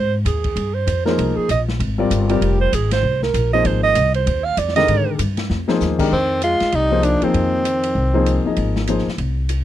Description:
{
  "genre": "modal jazz",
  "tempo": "195 BPM",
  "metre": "4/4",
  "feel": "swing 60% on 8ths",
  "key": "F dorian",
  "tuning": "A4 = 441 Hz",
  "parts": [
    { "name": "breathy alto saxophone", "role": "second line", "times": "0.0-8.5 s", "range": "Eb3 to F5", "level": "-21 LUFS", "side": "right 6 dB", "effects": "none" },
    { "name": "upright bass", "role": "bass", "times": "0.0-9.6 s", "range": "F1 to Ab2", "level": "-20 LUFS", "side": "left 1 dB", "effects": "none" },
    { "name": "open jazz drum kit", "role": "drums", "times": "0.3-9.6 s", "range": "crash cymbal, hi-hat, kick drum, ride cymbal, snare drum", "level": "-28 LUFS", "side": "equal", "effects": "none" },
    { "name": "warm baby grand piano", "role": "accompaniment", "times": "1.1-9.1 s", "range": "D3 to Eb5", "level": "-20 LUFS", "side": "left 4 dB", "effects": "none" },
    { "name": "warm tenor saxophone", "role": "melody", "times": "6.1-8.5 s", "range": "C4 to F4", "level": "-19 LUFS", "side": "equal", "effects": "none" }
  ],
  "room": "little or no reverb",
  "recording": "dry, close 1970s-style studio recording",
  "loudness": "-16 LUFS",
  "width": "side -12 dB against mid",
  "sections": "0.0-6.1 A section; 6.1-9.6 B section",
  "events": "alto saxophone solo 0.0-6.1; drum fill 5.5-5.8",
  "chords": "0.0 Fm9; 6.1 Fm7"
}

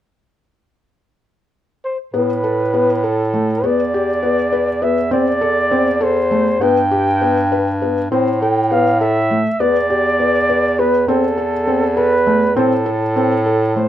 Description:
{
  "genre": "contemporary instrumental, contemporary",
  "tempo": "201 BPM (eighths)",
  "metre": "5/8",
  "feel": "straight",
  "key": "A minor",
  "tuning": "A4 = 440 Hz",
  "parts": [
    { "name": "mellow flugelhorn", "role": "melody", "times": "1.8-13.9 s", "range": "A4 to G5", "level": "-18 LUFS", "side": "right 2 dB", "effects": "none" },
    { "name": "felt-muted upright piano", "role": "arpeggios", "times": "2.1-13.9 s", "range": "A3 to B4", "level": "-18 LUFS", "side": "left 2 dB", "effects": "none" },
    { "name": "bright bass clarinet", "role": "bass", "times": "2.1-13.9 s", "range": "E2 to A2", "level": "-19 LUFS", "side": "equal", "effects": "none" }
  ],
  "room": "light reverb",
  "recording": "none",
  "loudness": "-14 LUFS",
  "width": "side -11 dB against mid",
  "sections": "0.6-2.1 A section; 2.1-13.9 B section",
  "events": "none",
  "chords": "0.6 N.C.; 2.1 Asus2; 3.6 E7(no3); 5.1 C6/E; 6.6 G; 8.1 Am; 9.6 E7(no3); 11.1 C6/E; 12.6 Am"
}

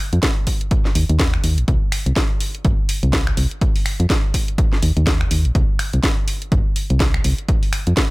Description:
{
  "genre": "piano house",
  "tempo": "124 BPM",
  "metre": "4/4",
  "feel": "swing 58% on 16ths",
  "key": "C minor",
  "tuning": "A4 = 440 Hz",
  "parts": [
    { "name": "solid FM bass", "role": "bass", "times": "0.1-7.9 s", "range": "G1 to F2", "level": "-17 LUFS", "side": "equal", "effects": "sidechain pumping" },
    { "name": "house drum kit", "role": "drums", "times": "0.1-8.1 s", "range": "finger snaps, hi-hat, snare drum", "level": "-23 LUFS", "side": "equal", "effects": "none" },
    { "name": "electronic kick drum", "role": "drums", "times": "0.2-8.1 s", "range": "none", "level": "-19 LUFS", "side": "equal", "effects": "none" }
  ],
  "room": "little or no reverb",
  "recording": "none",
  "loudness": "-16 LUFS",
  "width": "side -23 dB against mid",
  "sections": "0.0-8.1 A section",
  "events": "none",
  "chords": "none"
}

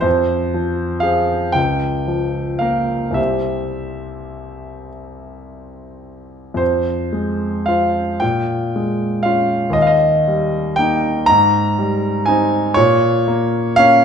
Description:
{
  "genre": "classical, romantic nocturne for solo piano",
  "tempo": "34-41 BPM (dotted quarters)",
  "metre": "6/8",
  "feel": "rubato",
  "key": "F minor",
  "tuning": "A4 = 440 Hz",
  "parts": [
    { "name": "warm concert grand piano", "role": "solo", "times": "0.0-14.0 s", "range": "C2 to Bb5", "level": "-15 LUFS", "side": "equal", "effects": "none" }
  ],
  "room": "moderate recital hall reverb, RT60 1.4 s",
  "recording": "minimal, uncompressed stereo recording",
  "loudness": "-15 LUFS",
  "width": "side -7 dB against mid",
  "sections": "0.0-14.0 A section",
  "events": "none",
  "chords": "0.1 Fm; 1.6 Bbm/Db; 3.2 C; 6.6 Fm; 8.2 Bbm7; 9.8 Eb; 11.3 Abmaj7; 12.8 Bbm"
}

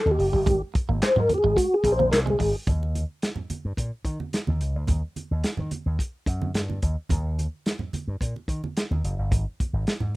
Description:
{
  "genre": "funk",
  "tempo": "108 BPM",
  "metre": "4/4",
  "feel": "straight",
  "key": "Eb mixolydian",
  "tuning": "A4 = 438 Hz",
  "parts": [
    { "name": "mellow tonewheel organ", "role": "melody", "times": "0.0-2.6 s", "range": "Gb4 to C5", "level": "-21 LUFS", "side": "left 1 dB", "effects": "chorus vibrato, stopped rotary speaker" },
    { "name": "slap bass with an envelope filter", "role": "bass", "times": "0.1-10.1 s", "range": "Gb1 to Eb3", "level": "-26 LUFS", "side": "equal", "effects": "none" },
    { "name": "congas", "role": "percussion", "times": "0.1-10.1 s", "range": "none", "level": "-32 LUFS", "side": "right 3 dB", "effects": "none" },
    { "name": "clean electric guitar", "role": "riff", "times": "0.2-2.5 s", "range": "Gb3 to Bb3", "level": "-32 LUFS", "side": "right 8 dB", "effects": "none" },
    { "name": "warm soul drum kit", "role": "drums", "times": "0.2-10.0 s", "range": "handclaps, hi-hat, kick drum, snare drum", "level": "-26 LUFS", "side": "equal", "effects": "none" }
  ],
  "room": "little or no reverb",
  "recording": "rough home demo mix",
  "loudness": "-23 LUFS",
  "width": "side -19 dB against mid",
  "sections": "0.0-2.7 A section; 2.7-10.2 B section",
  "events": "tonewheel organ solo 0.0-2.7",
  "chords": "0.5 Absus2; 2.7 Eb; 9.3 N.C."
}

